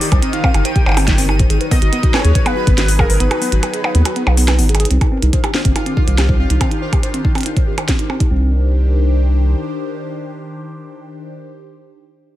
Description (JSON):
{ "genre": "IDM", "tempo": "141 BPM", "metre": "4/4", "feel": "straight", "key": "unclear", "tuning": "A4 = 443 Hz", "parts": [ { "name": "warm velvety synth lead", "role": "melody", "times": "0.0-4.5 s", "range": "Bb4 to G5", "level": "-24 LUFS", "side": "left 1 dB", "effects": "chorus, tremolo, ping-pong delay" }, { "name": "phased analog pad", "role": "sustained chords", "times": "0.0-11.6 s", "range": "Eb3 to C5", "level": "-25 LUFS", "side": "left 1 dB", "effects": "phaser, chorus" }, { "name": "mellow tine electric piano", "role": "arpeggios", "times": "0.0-8.5 s", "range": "Cb4 to C5", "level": "-24 LUFS", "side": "right 1 dB", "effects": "low-pass filter, digital delay" }, { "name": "glitchy drum kit", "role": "drums", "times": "0.0-8.3 s", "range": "hi-hat, percussion blips, snare drum", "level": "-20 LUFS", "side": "right 1 dB", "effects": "none" }, { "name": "pulsing gated texture", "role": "texture", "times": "0.0-8.3 s", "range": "Eb3 to Eb7", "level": "-29 LUFS", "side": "left 3 dB", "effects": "chorus, built-in reverb" }, { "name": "round analog bass", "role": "bass", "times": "0.1-9.5 s", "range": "G1 to Eb2", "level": "-14 LUFS", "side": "equal", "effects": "none" }, { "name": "electronic kick drum", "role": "drums", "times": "0.1-8.3 s", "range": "none", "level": "-16 LUFS", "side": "equal", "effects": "none" } ], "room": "little or no reverb", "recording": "none", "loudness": "-13 LUFS", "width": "side -14 dB against mid", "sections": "0.0-4.9 A section; 4.9-8.3 B section; 8.3-11.7 C section", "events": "kick drops out 3.2-4.9; drum fill 4.7; filter sweep on tine electric piano 4.9-8.3", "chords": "0.0 Cmadd9; 1.5 Abm7; 4.9 Cmadd9", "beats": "0.23 0.65 1.08 | 1.50 1.93 2.35 2.78 | 3.20 3.63 4.05 4.48 | 4.91 5.33 5.76 6.18 | 6.61 7.03 7.46 7.88 | 8.31 8.74 9.16 9.59 | 10.01 10.44 10.86 11.29" }